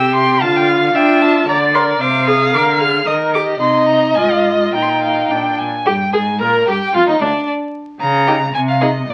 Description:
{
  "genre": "quick classical-period movement for string quartet",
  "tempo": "112 BPM",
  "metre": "2/4",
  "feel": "straight",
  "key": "Eb major",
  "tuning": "A4 = 440 Hz",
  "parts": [
    { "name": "clear violin", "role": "melody", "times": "0.0-9.1 s", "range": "D5 to F6", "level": "-21 LUFS", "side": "equal", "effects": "none" },
    { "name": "clear violin", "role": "second line", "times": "0.0-8.9 s", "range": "D4 to G5", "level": "-20 LUFS", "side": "equal", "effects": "none" },
    { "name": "warm viola", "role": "accompaniment", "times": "0.0-8.9 s", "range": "D4 to D5", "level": "-20 LUFS", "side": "equal", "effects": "none" },
    { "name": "warm cello", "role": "bass", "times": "0.0-9.1 s", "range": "D2 to D4", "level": "-22 LUFS", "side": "equal", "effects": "none" }
  ],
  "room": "moderate studio reverb, RT60 0.7 s",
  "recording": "very old 78 rpm record, vinyl crackle",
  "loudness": "-15 LUFS",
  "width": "mono",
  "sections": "0.0-5.9 A section; 5.9-9.1 B section",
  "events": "none",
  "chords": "0.4 Dm; 1.5 Bb/D; 2.0 Ab/C; 2.5 Bb7/D; 3.1 Eb; 3.6 Cm; 4.2 Fm7/Ab; 4.7 Eb/Bb; 5.3 Bb; 5.9 Gm; 6.9 Dm; 7.5 N.C.; 8.0 Eb7(no3)/Db; 8.5 Ab/C (rootless)",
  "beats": "| 0.42 0.95 | 1.48 2.01 | 2.54 3.07 | 3.61 4.16 | 4.74 5.30 | 5.86 6.41 | 6.94 7.47 | 8.00 8.54 | 9.08"
}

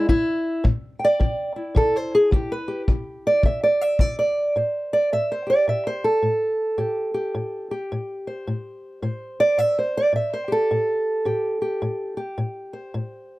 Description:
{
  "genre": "acoustic country blues, solo or duo",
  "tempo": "108 BPM",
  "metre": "4/4",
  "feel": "swing 62% on 8ths",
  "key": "A minor",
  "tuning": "A4 = 441 Hz",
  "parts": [
    { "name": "fingerpicked old ladder-braced acoustic guitar", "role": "melody", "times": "0.0-13.4 s", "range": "A2 to G5", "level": "-21 LUFS", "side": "right 1 dB", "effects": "none" },
    { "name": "kick drum", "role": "drums", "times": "0.1-4.2 s", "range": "none", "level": "-20 LUFS", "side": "left 1 dB", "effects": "none" }
  ],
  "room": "little or no reverb",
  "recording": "none",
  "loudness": "-20 LUFS",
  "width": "side -19 dB against mid",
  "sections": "0.0-4.5 A section; 4.5-13.4 A section",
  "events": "steel-string acoustic guitar solo 0.0-13.4",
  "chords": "0.1 A5; 2.3 Em; 4.5 Am7",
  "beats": "| 0.09 0.65 1.20 1.76 | 2.32 2.88 3.44 3.99 | 4.55 5.11 5.67 6.22 | 6.78 7.34 7.90 8.46 | 9.02 9.57 10.13 10.69 | 11.25 11.81 12.37 12.92"
}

